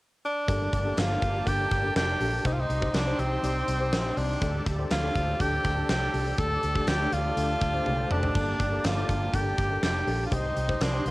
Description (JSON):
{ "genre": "1980s-style pop", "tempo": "122 BPM", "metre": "4/4", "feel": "straight", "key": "G minor", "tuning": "A4 = 439 Hz", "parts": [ { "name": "clear tenor saxophone", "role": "melody", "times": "0.3-11.1 s", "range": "C4 to A4", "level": "-29 LUFS", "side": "equal", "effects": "cassette tape" }, { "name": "FM electric piano with tremolo", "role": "accompaniment", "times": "0.5-11.1 s", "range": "G2 to D5", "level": "-34 LUFS", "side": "left 3 dB", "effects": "cassette tape" }, { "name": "brassy analog pad", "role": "sustained chords", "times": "0.5-11.1 s", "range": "Bb3 to C6", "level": "-36 LUFS", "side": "right 1 dB", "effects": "chorus, cassette tape" }, { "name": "vintage muted fingered electric bass", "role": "bass", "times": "0.5-11.1 s", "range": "F1 to D2", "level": "-30 LUFS", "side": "equal", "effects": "none" }, { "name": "big rock drum kit", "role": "drums", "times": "0.5-11.1 s", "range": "hi-hat, kick drum, snare drum, splash cymbal, toms", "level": "-30 LUFS", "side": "equal", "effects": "cassette tape" } ], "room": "moderate booth ambience, RT60 0.2 s", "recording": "home recording on cassette", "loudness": "-24 LUFS", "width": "side -20 dB against mid", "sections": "0.5-11.1 A section", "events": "drum fill 7.9-8.4", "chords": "0.5 Gmadd9; 2.5 Cm; 4.4 Dsus4; 8.4 Gmadd9; 10.3 Cm" }